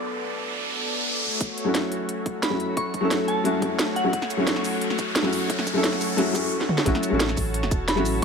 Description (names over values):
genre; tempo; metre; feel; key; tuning
liquid drum and bass; 176 BPM; 4/4; straight; A major; A4 = 439 Hz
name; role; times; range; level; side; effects
felt-muted upright piano; accompaniment; 0.0-8.2 s; F#3 to A4; -25 LUFS; left 1 dB; digital delay
lush unison pad; sustained chords; 0.0-8.2 s; A3 to A5; -31 LUFS; left 1 dB; chorus, sidechain pumping
riser; sound effects; 0.0-6.5 s; none; -31 LUFS; equal; none
drum and bass drum kit; drums; 1.4-8.2 s; hi-hat, shaker, snare drum, toms; -27 LUFS; right 1 dB; studio reverb
electronic kick drum; drums; 1.4-8.2 s; none; -28 LUFS; right 1 dB; high-pass filter on kick, studio reverb
soft synth bell; melody; 2.4-4.2, 7.9-8.2 s; F#5 to C#6; -29 LUFS; right 1 dB; chorus, digital delay
sub bass with octave; bass; 6.9-8.2 s; E1 to A1; -28 LUFS; right 1 dB; none
room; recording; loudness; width
moderate plate reverb, RT60 1.9 s; none; -22 LUFS; side -6 dB against mid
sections
0.0-1.4 A section; 1.4-6.9 B section; 6.9-8.2 C section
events
riser 0.0-1.4, 1.4-6.5; build-up 1.4-6.9; drum fill 6.6; drop 6.9-8.2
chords
0.0 Bm7; 1.2 A6